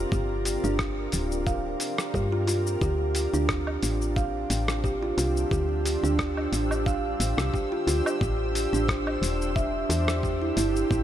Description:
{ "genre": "organic downtempo", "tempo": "89 BPM", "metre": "4/4", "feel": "swing 54% on 16ths", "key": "unclear", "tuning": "A4 = 440 Hz", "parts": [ { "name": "granular cloud pad", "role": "sustained chords", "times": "0.0-11.0 s", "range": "C4 to E6", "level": "-33 LUFS", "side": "equal", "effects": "built-in reverb, vintage 12-bit sampler grit, sidechain pumping, shimmer reverb" }, { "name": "kalimba", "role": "arpeggios", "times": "0.0-11.0 s", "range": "D4 to F5", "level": "-28 LUFS", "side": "right 2 dB", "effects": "ping-pong delay, shimmer reverb" }, { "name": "woody FM bass", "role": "bass", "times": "0.0-11.0 s", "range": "D1 to G2", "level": "-28 LUFS", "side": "equal", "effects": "none" }, { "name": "dusty soul sampler-style drum kit", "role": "drums", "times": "0.1-11.0 s", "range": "hi-hat, rim click, shaker, woodblock", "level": "-32 LUFS", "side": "left 1 dB", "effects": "overdrive, small room ambience" }, { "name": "electronic kick drum", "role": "drums", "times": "0.1-11.0 s", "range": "none", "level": "-29 LUFS", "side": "equal", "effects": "overdrive, small room ambience" } ], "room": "light reverb", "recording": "none", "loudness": "-24 LUFS", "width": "side -11 dB against mid", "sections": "0.0-11.0 A section", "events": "none", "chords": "0.0 Gm7; 2.8 Dm7; 8.2 Am7" }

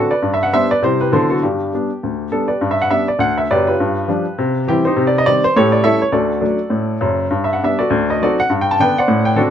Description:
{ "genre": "jazz, stride piano", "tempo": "203 BPM", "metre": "4/4", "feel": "swing 59% on 8ths", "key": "G major", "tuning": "A4 = 439 Hz", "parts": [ { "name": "clear upright piano", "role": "solo", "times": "0.0-9.5 s", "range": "F#1 to A5", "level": "-14 LUFS", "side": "equal", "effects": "none" } ], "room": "moderate studio reverb, RT60 0.5 s", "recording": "dark, warm production", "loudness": "-14 LUFS", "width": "side -9 dB against mid", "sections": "0.0-2.6 A section; 2.6-9.5 A section", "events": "none", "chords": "0.2 G; 0.8 C; 1.1 D13; 1.4 G; 3.8 G7; 4.4 C; 5.0 Cm; 5.5 A7; 6.1 D; 7.3 G; 7.9 D7b9; 8.5 G" }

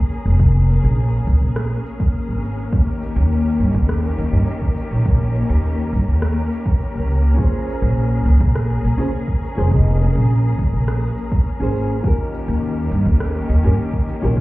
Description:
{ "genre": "sunset chillout", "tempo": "103 BPM", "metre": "4/4", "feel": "straight", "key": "Bb dorian", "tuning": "A4 = 440 Hz", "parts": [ { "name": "clear studio string section", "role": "sustained chords", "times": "0.0-14.4 s", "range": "Eb3 to Ab4", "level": "-26 LUFS", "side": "left 2 dB", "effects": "none" }, { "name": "wind-like tuned noise texture", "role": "texture", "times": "0.0-14.4 s", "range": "Bb4 to Bb5", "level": "-35 LUFS", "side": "left 2 dB", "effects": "built-in reverb" }, { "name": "electronic shaker and rim click", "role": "drums", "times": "0.1-14.4 s", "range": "none", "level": "-29 LUFS", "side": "equal", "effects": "overdrive" }, { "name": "upright bass", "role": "bass", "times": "0.3-14.4 s", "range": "F1 to G2", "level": "-16 LUFS", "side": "equal", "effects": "none" }, { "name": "electronic kick drum", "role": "drums", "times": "0.4-14.4 s", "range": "none", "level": "-18 LUFS", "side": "equal", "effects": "overdrive" }, { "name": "nylon-string guitar", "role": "accompaniment", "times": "7.3-14.4 s", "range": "Db4 to Eb5", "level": "-27 LUFS", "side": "right 1 dB", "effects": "auto-pan, digital delay" } ], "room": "small room ambience", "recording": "heard muffled through a wall, club reverb, EQ", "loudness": "-16 LUFS", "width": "side -19 dB against mid", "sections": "0.0-14.4 A section", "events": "none", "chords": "0.0 Bbm7; 2.7 Eb7; 7.4 Bbm9; 12.0 Eb7" }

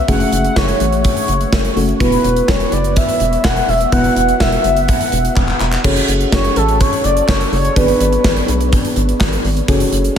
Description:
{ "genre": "synth-pop", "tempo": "125 BPM", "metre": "4/4", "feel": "straight", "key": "F# minor", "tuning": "A4 = 440 Hz", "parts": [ { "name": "mellow horn-like synth lead", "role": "melody", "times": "0.0-9.2 s", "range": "A4 to F#5", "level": "-18 LUFS", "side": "equal", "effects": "chorus, phaser, analog delay" }, { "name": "muted felt-like synth keys", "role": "accompaniment", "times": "0.0-10.2 s", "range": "A3 to D5", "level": "-19 LUFS", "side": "left 2 dB", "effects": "chorus" }, { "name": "rubbery square bass", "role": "bass", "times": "0.1-10.1 s", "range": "E1 to B1", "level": "-18 LUFS", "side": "equal", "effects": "none" }, { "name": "gated 80s drum kit", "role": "drums", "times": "0.1-10.2 s", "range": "crash cymbal, handclaps, hi-hat, kick drum, snare drum", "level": "-17 LUFS", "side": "equal", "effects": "none" } ], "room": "moderate huge ambient reverb, RT60 8.6 s", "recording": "dreamy mix soaked in reverb", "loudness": "-12 LUFS", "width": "side -8 dB against mid", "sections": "0.0-5.8 A section; 5.8-10.2 B section", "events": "drum fill 5.4-5.8", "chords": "0.1 F#madd9; 2.0 Esus2; 5.8 F#madd9; 7.8 G#dim" }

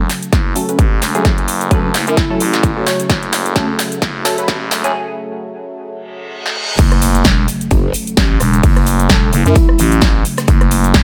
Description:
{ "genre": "bass house", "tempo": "130 BPM", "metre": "4/4", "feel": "swing 57% on 16ths", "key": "F# minor", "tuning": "A4 = 440 Hz", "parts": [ { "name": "sweeping resonant pad", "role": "sustained chords", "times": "0.0-11.0 s", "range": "C#3 to A3", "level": "-27 LUFS", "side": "equal", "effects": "chorus, sidechain pumping" }, { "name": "growling FM bass", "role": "bass", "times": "0.0-11.0 s", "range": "E1 to F#2", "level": "-18 LUFS", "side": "equal", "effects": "overdrive, sidechain pumping, high-pass filter" }, { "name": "big-room dance drum kit", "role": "drums", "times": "0.1-11.0 s", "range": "crash cymbal, hi-hat, rim click, shaker, snare drum, toms", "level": "-20 LUFS", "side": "equal", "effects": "high-pass filter on hats, high-pass filter on snare, high-pass filter on perc, high-pass filter on toms, high-pass filter on cymbals" }, { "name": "electronic kick drum", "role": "drums", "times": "0.3-11.0 s", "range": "none", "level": "-16 LUFS", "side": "equal", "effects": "none" }, { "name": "band-passed chord stab", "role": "stabs", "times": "0.6-4.9 s", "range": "F#3 to C#5", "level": "-23 LUFS", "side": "equal", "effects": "phaser, sidechain pumping, dub echo" }, { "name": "breathy flute-like synth lead", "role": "melody", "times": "1.7-2.7, 9.1-10.1 s", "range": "E4 to A4", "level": "-24 LUFS", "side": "equal", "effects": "subtle chorus, dub echo" }, { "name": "reverse cymbal and impact", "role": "sound effects", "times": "6.1-8.6 s", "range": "none", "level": "-27 LUFS", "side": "equal", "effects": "none" }, { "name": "big rock drum kit", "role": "drums", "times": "6.8-11.0 s", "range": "hi-hat, snare drum", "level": "-34 LUFS", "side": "equal", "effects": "none" }, { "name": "growl bass", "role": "bass", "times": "7.7-7.9 s", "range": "F#1", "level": "-18 LUFS", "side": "equal", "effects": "chorus, sidechain pumping" } ], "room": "light reverb", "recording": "high-pass filter", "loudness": "-14 LUFS", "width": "mono", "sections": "0.0-6.8 A section; 6.8-11.0 B section", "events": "build-up 0.0-6.8; drum fill 0.0-4.9, 6.4-6.8; filter sweep on synth stab 0.0-6.8; filter sweep 0.0-6.8; break 4.9-6.8; reverse cymbal 6.1-6.8; drop 6.8-11.0; impact 6.8-8.6", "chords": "0.0 F#m" }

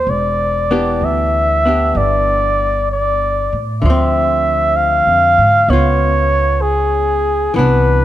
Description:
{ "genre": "jazz ballad", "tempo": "64 BPM", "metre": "4/4", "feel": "swing 67% on 8ths", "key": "unclear", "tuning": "A4 = 440 Hz", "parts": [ { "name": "warm flugelhorn", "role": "melody", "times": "0.0-8.0 s", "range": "Ab4 to F5", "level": "-14 LUFS", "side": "equal", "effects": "none" }, { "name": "archtop guitar, miked and amplified", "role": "accompaniment", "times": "0.0-8.0 s", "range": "D3 to G4", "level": "-21 LUFS", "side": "left 1 dB", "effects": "none" }, { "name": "upright bass", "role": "bass", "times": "0.0-8.0 s", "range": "E1 to A2", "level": "-18 LUFS", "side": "equal", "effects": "none" } ], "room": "light reverb", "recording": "none", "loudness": "-12 LUFS", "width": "side -13 dB against mid", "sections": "0.0-8.0 A section", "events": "none", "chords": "0.1 Em7; 3.8 Dm9; 5.7 Db7" }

